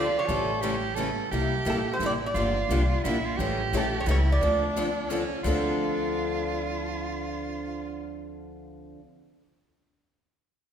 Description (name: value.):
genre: acoustic string swing (jazz manouche).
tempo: 174 BPM.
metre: 3/4.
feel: swing 62% on 8ths.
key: D minor.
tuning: A4 = 436 Hz.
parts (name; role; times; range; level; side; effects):
lap resonator guitar; melody; 0.0-5.0 s; A4 to D5; -29 LUFS; right 2 dB; none.
edgy soprano saxophone; second line; 0.0-8.3 s; C#4 to A4; -32 LUFS; right 4 dB; none.
picked steel-string acoustic guitar; accompaniment; 0.0-9.0 s; C3 to A4; -31 LUFS; left 4 dB; none.
picked steel-string acoustic guitar; accompaniment; 0.0-9.0 s; C3 to A4; -35 LUFS; right 5 dB; none.
upright bass; bass; 0.0-8.9 s; G1 to D2; -30 LUFS; equal; none.
room: wet scoring stage reverb, RT60 1.5 s.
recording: recorded in a church or concert hall.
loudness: -24 LUFS.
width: side -8 dB against mid.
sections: 0.0-5.4 A section; 5.4-7.5 B section.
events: none.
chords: 0.3 A7; 1.3 C7; 2.4 Gm7; 3.4 A7; 4.4 Dm7.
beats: | 0.29 0.63 0.98 | 1.32 1.66 2.01 | 2.35 2.70 3.04 | 3.38 3.73 4.07 | 4.42 4.76 5.10 | 5.45 5.79 6.13 | 6.48 6.82 7.17.